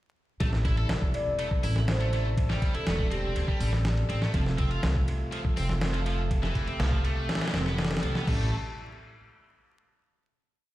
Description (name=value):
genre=breakbeat, breaks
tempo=122 BPM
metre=4/4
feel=straight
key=A minor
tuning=A4 = 440 Hz
part: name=tonewheel organ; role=sustained chords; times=0.4-8.5 s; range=C3 to A4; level=-36 LUFS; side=equal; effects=slow rotary speaker, sidechain pumping
part: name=heavy high-gain guitar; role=riff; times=0.4-8.5 s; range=E3 to A4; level=-36 LUFS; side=equal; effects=distortion, vintage 12-bit sampler grit, ping-pong delay
part: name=upright bass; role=bass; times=0.4-8.5 s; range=E1 to D2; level=-28 LUFS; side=equal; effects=tube saturation
part: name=dusty soul sampler-style drum kit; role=drums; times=0.4-8.4 s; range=crash cymbal, hi-hat, kick drum, ride cymbal, snare drum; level=-30 LUFS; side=equal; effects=studio reverb
part: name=vibraphone with soft mallets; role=melody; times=1.1-3.3 s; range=G4 to D5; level=-34 LUFS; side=equal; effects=old record sound, vintage 12-bit sampler grit, ping-pong delay
room=light reverb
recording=played on a big sound system in a bare room, large studio reverb, vinyl crackle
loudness=-25 LUFS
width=side -16 dB against mid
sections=0.4-8.3 drop; 8.3-10.2 final chord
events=drop 0.4-8.3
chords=0.4 Am7; 4.3 F; 8.3 Am7